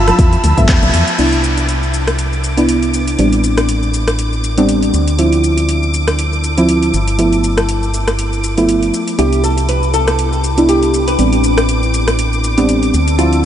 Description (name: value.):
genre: deep house.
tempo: 120 BPM.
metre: 4/4.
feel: swing 56% on 16ths.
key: C major.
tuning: A4 = 444 Hz.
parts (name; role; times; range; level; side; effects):
hollow-body jazz guitar; melody; 0.0-0.9, 9.2-13.4 s; F4 to B4; -20 LUFS; equal; wide subtle chorus, analog delay.
warm analog pad; sustained chords; 0.0-13.5 s; G5 to E6; -26 LUFS; right 1 dB; chorus, sidechain pumping.
deep mellow chord stab; stabs; 0.0-13.5 s; F3 to E5; -15 LUFS; right 1 dB; chorus, sidechain pumping, analog delay.
organ-like FM bass; bass; 0.0-13.5 s; G1 to G2; -16 LUFS; equal; sidechain pumping.
string machine, violins; texture; 0.0-13.5 s; D6 to E6; -25 LUFS; equal; ensemble chorus, sidechain pumping.
deep house drum kit; drums; 0.1-13.4 s; crash cymbal, handclaps, hi-hat, rim click, shaker; -21 LUFS; left 1 dB; overdrive.
congas; percussion; 0.1-0.9 s; none; -26 LUFS; left 4 dB; none.
electronic kick drum; drums; 0.2-0.8 s; none; -12 LUFS; equal; overdrive.
room: moderate huge ambient reverb, RT60 7.8 s.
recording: dreamy mix soaked in reverb, nothing above 10.4 kHz.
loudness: -11 LUFS.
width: side -10 dB against mid.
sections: 0.0-1.2 A section; 1.2-13.5 B section.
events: band accent 0.7; filter sweep on analog synth pad 1.2-13.5.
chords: 0.0 G13; 1.2 Cmaj9; 3.2 Am11; 4.9 Dm9; 6.9 G13; 9.2 Cmaj9; 11.2 Am11; 12.9 Dm9.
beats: 0.19 0.69 | 1.19 1.69 2.19 2.69 | 3.19 3.69 4.19 4.69 | 5.19 5.69 6.19 6.69 | 7.19 7.69 8.19 8.69 | 9.19 9.69 10.19 10.69 | 11.19 11.69 12.19 12.69 | 13.19.